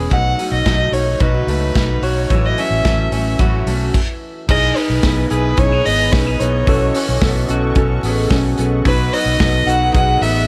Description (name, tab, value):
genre	jangly indie pop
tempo	110 BPM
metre	4/4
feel	straight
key	B mixolydian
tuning	A4 = 440 Hz
part	picked twelve-string acoustic guitar	accompaniment	0.0-4.0 s	A2 to G#4	-27 LUFS	equal	none
part	electric guitar through a small old amp	arpeggios	0.0-10.5 s	D#3 to G#4	-25 LUFS	equal	none
part	vintage muted fingered electric bass	bass	0.0-10.5 s	G#1 to C#2	-22 LUFS	equal	none
part	dark fiddle	melody	0.1-10.5 s	B4 to F#5	-22 LUFS	equal	tape echo
part	modern studio drum kit	drums	0.1-10.4 s	crash cymbal, hi-hat, kick drum, snare drum	-21 LUFS	equal	none
part	warbly lo-fi synth keys	accompaniment	4.5-10.5 s	C#4 to B4	-24 LUFS	equal	chorus
part	lush unison pad	sustained chords	4.5-10.5 s	A4 to D#6	-32 LUFS	equal	chorus
room	small room ambience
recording	vinyl crackle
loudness	-16 LUFS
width	mono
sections	0.0-4.5 A section; 4.5-10.5 B section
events	stop 3.9-4.5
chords	0.1 B7; 2.3 A6; 4.5 Emaj7/B; 6.7 A6/B; 8.9 B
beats	| 0.12 0.66 1.21 1.75 | 2.30 2.85 3.39 3.94 | 4.49 5.03 5.58 6.12 | 6.67 7.22 7.77 8.31 | 8.86 9.41 9.96